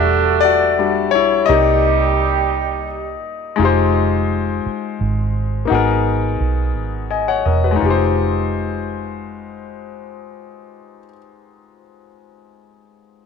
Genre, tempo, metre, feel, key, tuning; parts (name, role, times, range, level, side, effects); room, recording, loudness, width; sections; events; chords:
slow six-eight R&B; 57 BPM (dotted quarters); 6/8; straight; F dorian; A4 = 444 Hz
clear concert grand piano; accompaniment; 0.0-13.3 s; G3 to Ab5; -18 LUFS; left 7 dB
warm horn section; stabs; 0.0-3.2 s; G3 to A4; -19 LUFS; right 14 dB
vintage muted fingered electric bass; bass; 0.0-11.1 s; E1 to C2; -20 LUFS; right 3 dB
moderate echo chamber reverb, RT60 1.3 s, studio reverb; 1960s-style stereo with parts hard left and right; -15 LUFS; side -6 dB against mid
0.0-3.6 A section; 3.6-7.8 B section; 7.8-12.0 C section
grand piano solo 0.0-3.6
0.0 Em9; 1.5 Cm9; 3.6 Fm9; 5.7 Abm9; 7.8 Fm9